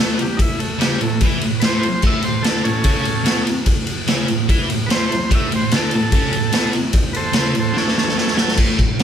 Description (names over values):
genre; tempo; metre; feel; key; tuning
garage rock duo or trio; 146 BPM; 4/4; straight; A mixolydian; A4 = 440 Hz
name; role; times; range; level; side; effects
overdriven combo organ; melody; 0.0-8.6 s; G3 to E5; -24 LUFS; equal; none
thick fuzz guitar; riff; 0.0-9.0 s; A2 to F#4; -21 LUFS; right 1 dB; distortion
raw garage drum kit; drums; 0.2-9.0 s; crash cymbal, kick drum, ride cymbal, snare drum; -17 LUFS; equal; none
room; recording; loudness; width
light reverb; band playing live in one room; -15 LUFS; side -9 dB against mid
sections
0.0-8.6 A section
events
transistor combo organ solo 0.0-8.6; drum fill 7.8-8.6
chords
0.0 A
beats
| 0.39 0.80 1.21 1.62 | 2.03 2.44 2.85 3.26 | 3.67 4.08 4.49 4.90 | 5.31 5.72 6.13 6.54 | 6.95 7.36 7.76 8.17 | 8.58 8.99